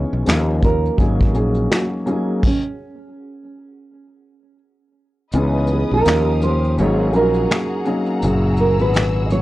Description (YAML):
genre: lo-fi hip hop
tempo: 83 BPM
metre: 4/4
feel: swing 60% on 16ths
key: unclear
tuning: A4 = 441 Hz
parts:
  - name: nylon-string guitar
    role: melody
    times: 0.0-9.4 s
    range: C#4 to D#5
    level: -22 LUFS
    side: right 2 dB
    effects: low-pass filter, tape echo
  - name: felt-muted upright piano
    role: accompaniment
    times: 0.0-9.4 s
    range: A#2 to G#4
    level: -20 LUFS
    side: left 1 dB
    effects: low-pass filter
  - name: fretless electric bass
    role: bass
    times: 0.0-9.4 s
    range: F#1 to D#2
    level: -19 LUFS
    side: equal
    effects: none
  - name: vintage brush drum kit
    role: drums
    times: 0.3-9.4 s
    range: crash cymbal, finger snaps, hi-hat, kick drum, snare drum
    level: -19 LUFS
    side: equal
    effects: none
  - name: rich studio string section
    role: sustained chords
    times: 5.3-9.4 s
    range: G4 to E6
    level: -31 LUFS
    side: left 2 dB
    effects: low-pass filter
room: light reverb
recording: dry, gritty hardware recording, cassette tape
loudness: -15 LUFS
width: side -17 dB against mid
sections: 0.0-5.3 A section; 5.3-9.4 B section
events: stop 2.4-5.3; kick muted 5.3-9.4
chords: 0.3 D#9; 1.0 G#9sus4; 2.4 N.C.; 5.3 C#m9; 6.0 D#9; 6.8 G#9sus4; 8.2 F#9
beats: 0.27 0.99 1.71 | 2.43 3.16 3.88 4.60 | 5.33 6.05 6.77 7.49 | 8.22 8.94